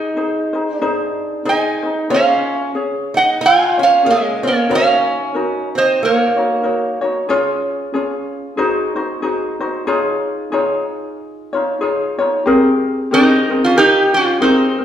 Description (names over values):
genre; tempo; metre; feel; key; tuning
Hawaiian; 93 BPM; 4/4; swing 58% on 8ths; Db major; A4 = 443 Hz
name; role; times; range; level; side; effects
metal-body resonator slide guitar; melody; 0.0-7.0, 13.1-14.8 s; C4 to Ab5; -14 LUFS; right 2 dB; none
picked acoustic archtop guitar; second line; 0.0-7.0 s; Ab3 to F4; -19 LUFS; right 1 dB; none
ukulele; accompaniment; 0.0-14.8 s; C4 to Db5; -17 LUFS; left 1 dB; none
room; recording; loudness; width
wet recital hall reverb, RT60 1.4 s; recorded in a church or concert hall; -14 LUFS; side -10 dB against mid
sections
0.0-2.1 A section; 2.1-12.5 B section; 12.5-14.8 A section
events
none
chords
0.0 Ab; 2.1 Db; 4.7 Gb6; 7.3 Db; 8.6 Ab7; 9.9 Dbadd9; 12.5 Abmaj9